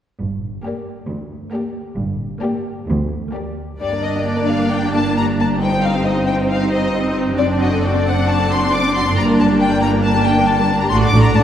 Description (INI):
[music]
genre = quick classical-period movement for string orchestra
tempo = 135 BPM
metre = 4/4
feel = rubato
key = G minor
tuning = A4 = 439 Hz
[part]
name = rich studio cello section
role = bass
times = 0.2-11.4 s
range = D2 to A2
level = -23 LUFS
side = right 1 dB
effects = none
[part]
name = rich studio double bass section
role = bass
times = 0.2-11.4 s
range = F#1 to A1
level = -21 LUFS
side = right 1 dB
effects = none
[part]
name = clear studio viola section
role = accompaniment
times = 0.6-11.4 s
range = A3 to Eb4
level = -20 LUFS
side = equal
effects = none
[part]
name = rich studio violin section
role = melody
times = 0.7-11.4 s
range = D5 to D6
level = -20 LUFS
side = left 4 dB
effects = none
[part]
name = clear studio violin section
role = second line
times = 0.7-11.4 s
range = G3 to D5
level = -24 LUFS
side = left 1 dB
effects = none
[sound]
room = wet concert hall reverb, RT60 1.9 s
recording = heard from further back in the room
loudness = -15 LUFS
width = side -10 dB against mid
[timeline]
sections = 0.2-3.8 A section; 3.8-11.4 B section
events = none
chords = 0.2 Gm; 5.6 Cm/G; 7.4 D7/F#; 9.2 Gm; 10.9 D/A